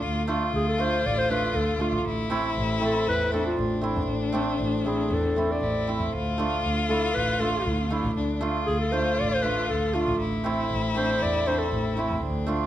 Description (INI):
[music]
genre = klezmer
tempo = 118 BPM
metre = 4/4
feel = straight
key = D minor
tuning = A4 = 440 Hz
[part]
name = rich violin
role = second line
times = 0.0-12.7 s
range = D4 to F4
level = -30 LUFS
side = left 5 dB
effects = none
[part]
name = clear double bass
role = bass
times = 0.0-12.5 s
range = A1 to E2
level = -28 LUFS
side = equal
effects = none
[part]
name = hammered dulcimer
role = accompaniment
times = 0.3-12.6 s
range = A3 to F4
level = -30 LUFS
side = right 3 dB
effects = none
[part]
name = mellow clarinet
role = melody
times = 0.6-12.0 s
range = F4 to D5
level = -27 LUFS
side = left 1 dB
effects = none
[sound]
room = moderate recital hall reverb, RT60 1.3 s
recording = close, detailed microphones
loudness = -23 LUFS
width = side -12 dB against mid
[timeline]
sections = 0.0-12.7 A section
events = none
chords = 0.0 Dm; 2.1 Am; 6.1 Dm; 10.2 Am